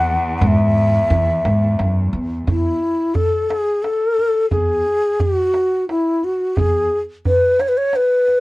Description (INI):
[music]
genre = Persian modal ensemble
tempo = 88 BPM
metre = 3/4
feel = straight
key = E dastgah mahur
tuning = A4 = 442 Hz
[part]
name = breathy mellow ney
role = melody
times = 0.0-8.4 s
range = E4 to F#5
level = -16 LUFS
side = left 1 dB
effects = none
[part]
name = upright bass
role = bass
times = 0.0-6.9 s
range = E2 to E3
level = -18 LUFS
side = equal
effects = none
[part]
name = rich cello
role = drone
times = 0.0-2.5 s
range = E2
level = -26 LUFS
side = equal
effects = none
[part]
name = tombak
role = percussion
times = 0.1-8.4 s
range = none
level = -20 LUFS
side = right 2 dB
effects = none
[sound]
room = light reverb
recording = worn, warbling old tape, cassette tape, warbly pitch drift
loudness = -15 LUFS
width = side -20 dB against mid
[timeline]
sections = 0.0-2.5 A section; 2.5-8.4 B section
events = none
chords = none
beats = | 0.42 1.11 1.79 | 2.47 3.16 3.84 | 4.52 5.21 5.89 | 6.57 7.26 7.94